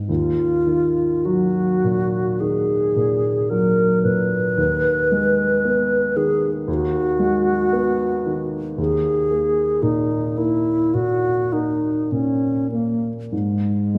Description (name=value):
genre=classical, impressionist duo for alto flute and grand piano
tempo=48-58 BPM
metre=4/4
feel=rubato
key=unclear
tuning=A4 = 436 Hz
part: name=warm grand piano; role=accompaniment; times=0.0-14.0 s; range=D#2 to B3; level=-25 LUFS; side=equal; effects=none
part: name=hollow alto flute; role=melody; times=0.1-14.0 s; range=G#3 to B4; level=-22 LUFS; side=equal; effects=none
room=wet concert hall reverb, RT60 1.8 s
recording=none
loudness=-20 LUFS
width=mono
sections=0.0-14.0 A section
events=none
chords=0.1 D#madd9; 4.6 G#m/D#; 8.8 D#sus4; 13.3 N.C.